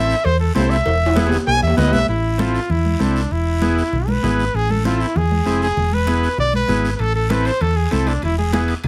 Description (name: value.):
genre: latin, cumbia.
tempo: 196 BPM.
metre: 4/4.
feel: straight.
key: A harmonic minor.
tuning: A4 = 440 Hz.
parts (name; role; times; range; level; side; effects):
clear trumpet; melody; 0.0-8.6 s; D4 to G#5; -23 LUFS; equal; none.
overdriven combo organ; accompaniment; 0.0-8.7 s; B3 to B4; -24 LUFS; equal; none.
hollow-body short-scale fingered electric bass; bass; 0.0-8.9 s; E1 to E2; -22 LUFS; equal; none.
guiro; percussion; 0.1-8.9 s; none; -38 LUFS; equal; none.
cowbell and timbales; percussion; 0.2-2.1, 7.0-8.9 s; none; -27 LUFS; equal; none.
congas; percussion; 0.3-8.9 s; none; -26 LUFS; equal; none.
room: moderate studio ambience, RT60 0.5 s.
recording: none.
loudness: -18 LUFS.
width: mono.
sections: 0.0-2.1 A section; 2.1-8.9 B section.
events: trumpet solo 0.0-2.1; drum fill 0.9-2.1.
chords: 0.0 Am; 0.9 E; 2.1 Am; 3.3 E; 4.5 Am; 5.8 E; 7.0 Am; 8.2 E.